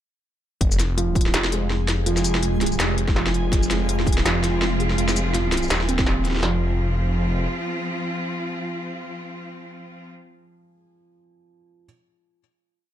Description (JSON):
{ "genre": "half-time drum and bass", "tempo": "165 BPM", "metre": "4/4", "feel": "swing 57% on 16ths, half-time", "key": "F minor", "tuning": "A4 = 436 Hz", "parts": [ { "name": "phased detuned saw bass", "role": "bass", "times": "0.6-7.5 s", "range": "Eb1 to F1", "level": "-23 LUFS", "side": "equal", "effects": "phaser, tube saturation" }, { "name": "industrial drum kit", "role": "drums", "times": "0.6-6.5 s", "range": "kick drum, snare drum", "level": "-22 LUFS", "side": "equal", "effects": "none" }, { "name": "industrial drum kit", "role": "drums", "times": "0.6-6.4 s", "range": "hi-hat, shaker, snare drum", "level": "-25 LUFS", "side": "equal", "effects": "none" }, { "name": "backwards swelling texture", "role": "texture", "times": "1.6-6.4 s", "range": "Ab3 to Ab4", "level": "-31 LUFS", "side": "right 1 dB", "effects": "built-in reverb" }, { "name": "felt-muted upright piano", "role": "arpeggios", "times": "1.0-6.6 s", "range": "F3 to C4", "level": "-28 LUFS", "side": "right 2 dB", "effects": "ping-pong delay" }, { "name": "rich studio cello section", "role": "sustained chords", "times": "3.5-10.1 s", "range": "F3 to F4", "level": "-29 LUFS", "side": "equal", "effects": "sidechain pumping" } ], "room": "light reverb", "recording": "none", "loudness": "-20 LUFS", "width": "side -11 dB against mid", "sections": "0.6-6.4 drop; 6.4-9.3 final chord", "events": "drop 0.6-6.4", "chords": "0.6 Fm; 6.4 F5" }